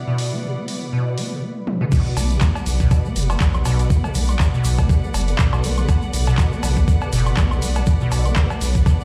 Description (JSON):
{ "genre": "acid house", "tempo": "121 BPM", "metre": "4/4", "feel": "swing 56% on 16ths", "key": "B minor", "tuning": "A4 = 440 Hz", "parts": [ { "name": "clear studio string section", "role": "sustained chords", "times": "0.0-9.0 s", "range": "B2 to F#5", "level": "-34 LUFS", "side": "equal", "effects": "sidechain pumping" }, { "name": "acid bass, square", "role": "riff", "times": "0.0-8.9 s", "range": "B2 to B3", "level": "-26 LUFS", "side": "equal", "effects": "overdrive, ensemble chorus, tape echo" }, { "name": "granular cloud pad", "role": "texture", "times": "0.0-9.0 s", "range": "B3 to D5", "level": "-40 LUFS", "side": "equal", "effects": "built-in reverb, sidechain pumping" }, { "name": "punchy analog drum machine", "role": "drums", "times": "0.2-9.0 s", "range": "cowbell, crash cymbal, handclaps, hi-hat, toms, woodblock", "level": "-30 LUFS", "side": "equal", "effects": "none" }, { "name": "electronic kick drum", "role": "drums", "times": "1.9-9.0 s", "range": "none", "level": "-19 LUFS", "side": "equal", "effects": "overdrive" }, { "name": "tube shaker", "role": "percussion", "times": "1.9-9.0 s", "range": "none", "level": "-38 LUFS", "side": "equal", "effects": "none" }, { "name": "saturated sub bass", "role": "bass", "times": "2.2-8.8 s", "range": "F#1 to B1", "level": "-22 LUFS", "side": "equal", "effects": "sidechain pumping" } ], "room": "digital ambience", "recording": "played on a big sound system in a bare room, stone room reverb", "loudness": "-19 LUFS", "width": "mono", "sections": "0.0-1.9 A section; 1.9-9.0 B section", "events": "filter sweep on drum 0.0-1.9; filter sweep on string section 0.0-1.9; drum fill 1.7; drop 1.9-9.0", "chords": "0.0 Bm" }